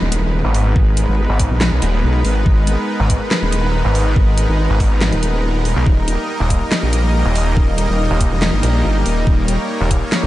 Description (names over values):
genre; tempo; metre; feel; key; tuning
heavy wobble dubstep; 141 BPM; 4/4; half-time; G# harmonic minor; A4 = 440 Hz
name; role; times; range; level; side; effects
supersaw pad; sustained chords; 0.0-10.3 s; G3 to D#5; -21 LUFS; equal; sidechain pumping
wobble bass; bass; 0.0-10.3 s; D#1 to B1; -16 LUFS; equal; chorus, overdrive
impact; sound effects; 0.0-0.8 s; none; barely audible; none; none
dubstep drum kit; drums; 0.1-10.2 s; handclaps, hi-hat, snare drum; -24 LUFS; equal; small room ambience
snarling distorted saw bass; bass; 0.4-10.0 s; D#1 to B1; -16 LUFS; equal; distortion, overdrive
electronic kick drum; drums; 0.8-10.0 s; none; -16 LUFS; equal; small room ambience
room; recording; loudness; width
light reverb, digital ambience; nothing above 10.9 kHz; -14 LUFS; side -15 dB against mid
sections
0.0-10.3 A section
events
impact 0.0-0.8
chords
0.0 G#madd9; 5.9 D#